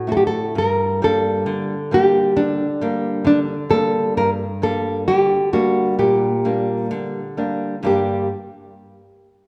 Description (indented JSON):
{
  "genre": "fado-style ballad",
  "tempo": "66 BPM",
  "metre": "2/4",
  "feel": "rubato",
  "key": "G harmonic minor",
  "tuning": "A4 = 440 Hz",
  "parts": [
    { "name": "nylon-string guitar", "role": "melody", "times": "0.0-8.3 s", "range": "D4 to Bb4", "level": "-20 LUFS", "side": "equal", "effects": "none" },
    { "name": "flamenco guitar", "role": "accompaniment", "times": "0.0-8.3 s", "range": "G2 to F#4", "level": "-25 LUFS", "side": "equal", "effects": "none" }
  ],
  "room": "wet recital hall reverb, RT60 1.8 s",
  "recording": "dark, warm production",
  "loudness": "-19 LUFS",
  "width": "mono",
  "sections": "0.0-7.8 A section; 7.8-9.5 B section",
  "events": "none",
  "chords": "0.0 D; 0.5 Gm"
}